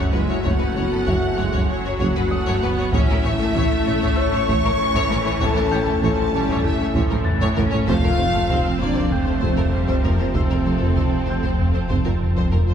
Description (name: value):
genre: cinematic, hybrid orchestral and electronic film score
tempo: 97 BPM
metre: 4/4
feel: straight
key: unclear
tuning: A4 = 441 Hz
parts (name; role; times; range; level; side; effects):
- clear symphonic violin section; melody; 0.0-12.7 s; A4 to C#5; -30 LUFS; left 5 dB; none
- clear symphonic violin section; second line; 0.0-12.2 s; A4 to C#6; -28 LUFS; left 2 dB; none
- clear symphonic viola section; accompaniment; 0.0-12.5 s; E3 to C#4; -28 LUFS; right 2 dB; none
- dark French horn section; sustained chords; 0.0-12.2 s; A3 to C#5; -26 LUFS; left 3 dB; none
- evolving wavetable pad; sustained chords; 0.0-12.7 s; F3 to A5; -30 LUFS; right 1 dB; chorus, built-in reverb
- warm trombone section; sustained chords; 0.0-12.5 s; A2 to C#4; -31 LUFS; right 2 dB; none
- harp-like synth pluck; arpeggios; 0.0-12.7 s; F3 to A4; -32 LUFS; left 3 dB; none
- clear symphonic cello section; bass; 0.0-12.7 s; F2 to A2; -28 LUFS; right 2 dB; none
- sub bass with octave; bass; 0.0-12.7 s; F1 to A1; -30 LUFS; equal; none
- dark tuba; bass; 0.1-12.6 s; F1 to A1; -29 LUFS; right 2 dB; none
- rich symphonic double bass section; bass; 0.1-12.6 s; F1 to A1; -30 LUFS; right 2 dB; none
- taiko ensemble; drums; 0.5-12.7 s; none; -23 LUFS; equal; none
- warm grand piano; texture; 1.1-12.7 s; C#5 to A6; -37 LUFS; left 1 dB; none
room: wet church reverb, RT60 2.9 s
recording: recorded in a church or concert hall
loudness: -17 LUFS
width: side -8 dB against mid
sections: 0.0-12.7 A section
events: none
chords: 0.0 F#m; 2.9 A; 7.9 F